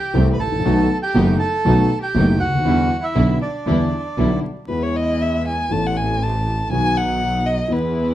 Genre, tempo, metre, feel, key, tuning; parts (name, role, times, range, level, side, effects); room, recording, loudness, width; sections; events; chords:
tango; 119 BPM; 4/4; rubato; E minor, E major from 4.7 s; A4 = 439 Hz
bandoneon; melody; 0.0-4.4 s; D5 to B5; -24 LUFS; right 4 dB; plate reverb
warm violin; second line; 0.0-8.1 s; D4 to A5; -24 LUFS; left 1 dB
dark baby grand piano; accompaniment; 0.1-8.1 s; F#1 to A4; -21 LUFS; left 2 dB
dark studio string section; stabs; 0.1-8.1 s; F#3 to E4; -29 LUFS; right 1 dB
clear double bass; bass; 0.1-8.1 s; F#1 to E2; -20 LUFS; right 1 dB
moderate studio reverb, RT60 0.7 s; dark, warm production, vinyl crackle; -16 LUFS; side -13 dB against mid
0.0-4.7 A section; 4.7-8.1 B section
violin solo 4.7-8.1
0.0 Am7/C; 0.6 B7; 2.7 Em7; 4.7 E; 5.7 Amadd9; 6.7 B